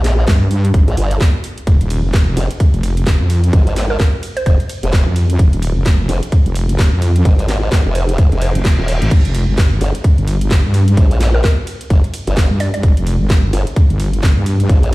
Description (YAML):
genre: bass house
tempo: 129 BPM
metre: 4/4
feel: swing 59% on 16ths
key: G phrygian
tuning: A4 = 440 Hz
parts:
  - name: formant-sweep wobble bass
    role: bass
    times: 0.0-14.9 s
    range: Eb1 to Bb1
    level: -15 LUFS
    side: equal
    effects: chorus, tube saturation, sidechain pumping
  - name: house drum kit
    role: drums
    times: 0.0-14.9 s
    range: crash cymbal, hi-hat, ride cymbal, snare drum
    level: -24 LUFS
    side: equal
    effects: none
  - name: wobble bass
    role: bass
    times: 0.3-14.7 s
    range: Eb1 to G2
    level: -14 LUFS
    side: equal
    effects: chorus, tube saturation, sidechain pumping
  - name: electronic kick drum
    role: drums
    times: 0.3-14.8 s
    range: none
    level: -12 LUFS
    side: equal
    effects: none
  - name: mallet-like synth pluck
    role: melody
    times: 3.9-4.5, 11.3-12.8 s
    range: Bb4 to D5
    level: -24 LUFS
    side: right 1 dB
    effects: chorus, ping-pong delay
  - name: reverse cymbal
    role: sound effects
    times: 8.3-9.1 s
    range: none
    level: -28 LUFS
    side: left 1 dB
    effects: none
room: little or no reverb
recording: played on a big sound system in a bare room, stone room reverb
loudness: -12 LUFS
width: side -20 dB against mid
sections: 0.0-14.9 A section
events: reverse cymbal 8.3-9.1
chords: 0.0 Gm; 1.7 Fm; 9.1 Gm